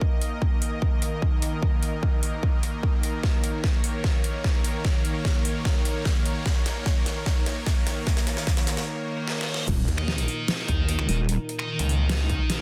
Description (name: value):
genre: heavy wobble dubstep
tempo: 149 BPM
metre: 4/4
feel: half-time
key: unclear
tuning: A4 = 440 Hz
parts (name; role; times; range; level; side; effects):
- supersaw pad; sustained chords; 0.0-12.6 s; Bb2 to Eb5; -34 LUFS; equal; sidechain pumping, low-pass filter
- electronic kick drum; drums; 0.0-12.4 s; none; -26 LUFS; equal; overdrive
- riser and reverse cymbal; sound effects; 0.2-9.7 s; none; -41 LUFS; equal; none
- dubstep drum kit; drums; 0.2-12.6 s; crash cymbal, finger snaps, hi-hat, snare drum; -34 LUFS; equal; overdrive, high-pass filter on hats, high-pass filter on snare, high-pass filter on cymbals, high-pass filter on room
- wobble bass; bass; 9.7-11.4 s; Eb1; -26 LUFS; equal; chorus, overdrive
- snarling distorted saw bass; bass; 9.9-12.4 s; Db2 to Eb2; -27 LUFS; equal; overdrive
- scooped high-gain guitar; stabs; 10.0-12.6 s; Eb4 to Eb5; -33 LUFS; equal; distortion, dub echo
room: little or no reverb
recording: dense, heavily limited modern master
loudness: -25 LUFS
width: mono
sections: 0.0-9.7 A section; 9.7-12.6 B section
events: build-up 0.0-9.7; riser 0.2-8.9; drum fill 3.2-8.9, 9.3-9.7; break 8.9-9.7; reverse cymbal 8.9-9.7; drop 9.7-12.6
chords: 0.0 Eb5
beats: | 0.01 0.42 0.82 1.22 | 1.62 2.03 2.43 2.83 | 3.23 3.64 4.04 4.44 | 4.85 5.25 5.65 6.05 | 6.46 6.86 7.26 7.67 | 8.07 8.47 8.87 9.28 | 9.68 10.08 10.48 10.89 | 11.29 11.69 12.09 12.50